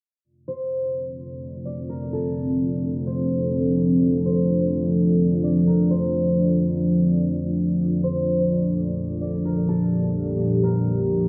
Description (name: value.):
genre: hip hop.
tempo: 127 BPM.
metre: 4/4.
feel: half-time.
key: D minor.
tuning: A4 = 440 Hz.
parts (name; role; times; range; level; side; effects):
dark analog pad; sustained chords; 1.2-11.3 s; Bb2 to A4; -23 LUFS; equal; chorus.
backwards swelling texture; texture; 1.2-11.3 s; Bb3 to D5; -38 LUFS; equal; built-in reverb.
concert harp; melody; 0.5-11.3 s; A4 to D5; -32 LUFS; equal; tape echo.
room: light reverb, small room reverb.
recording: echo-heavy mix, low-pass filter, nothing above 10.5 kHz.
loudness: -22 LUFS.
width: mono.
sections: 0.2-11.3 A section.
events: none.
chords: 0.2 Dm7; 7.8 Bbmaj7.